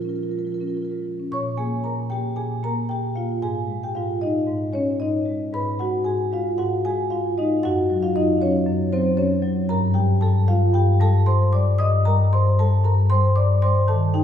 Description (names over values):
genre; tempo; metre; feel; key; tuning
classical, contemporary piece for solo marimba; 115 BPM; 4/4; rubato; Bb minor, C dorian from 9.7 s; A4 = 440 Hz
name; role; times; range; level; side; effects
marimba with medium mallets; solo; 0.0-14.2 s; Gb2 to Eb6; -19 LUFS; left 1 dB; none
room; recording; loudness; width
wet scoring stage reverb, RT60 1.6 s; heard from further back in the room, small room ambience; -19 LUFS; side -9 dB against mid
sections
0.0-1.3 A section; 1.3-14.2 B section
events
none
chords
0.0 Bbm7; 3.4 Ab5; 5.5 Abm7; 7.6 Gb5; 9.7 Gm9; 11.8 Cm9/G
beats
0.20 0.75 | 1.31 1.84 2.37 2.90 | 3.43 3.96 4.48 5.01 | 5.54 6.06 6.58 7.11 | 7.63 8.14 8.67 9.19 | 9.70 10.23 10.75 11.27 | 11.79 12.31 12.83 13.36 | 13.88